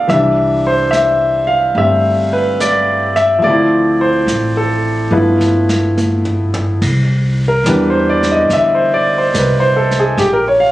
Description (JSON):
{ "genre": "jazz ballad", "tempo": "72 BPM", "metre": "4/4", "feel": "swing 68% on 8ths", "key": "C major", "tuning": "A4 = 441 Hz", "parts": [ { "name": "clear grand piano", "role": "accompaniment", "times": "0.0-10.7 s", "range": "E3 to F5", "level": "-12 LUFS", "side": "equal", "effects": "none" }, { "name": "upright bass", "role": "bass", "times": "0.1-10.7 s", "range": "G1 to E2", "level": "-18 LUFS", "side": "equal", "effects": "none" }, { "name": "jazz brush drum kit", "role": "drums", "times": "0.1-10.7 s", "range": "brushed snare drum, hi-hat, kick drum, ride cymbal, snare drum, toms", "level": "-24 LUFS", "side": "right 1 dB", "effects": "none" } ], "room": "little or no reverb", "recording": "recorded on a phone in the room, studio reverb, compression", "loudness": "-11 LUFS", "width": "side -16 dB against mid", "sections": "0.0-6.8 A section; 6.8-10.7 B section", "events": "drum fill 5.1-6.8", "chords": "0.1 Cadd9; 3.4 Dm7; 5.1 G13; 6.8 Cmaj9; 10.2 Absus4 (rootless)", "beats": "| 0.10 0.93 1.76 2.60 | 3.44 4.27 5.12 5.96 | 6.81 7.66 8.50 9.34 | 10.18" }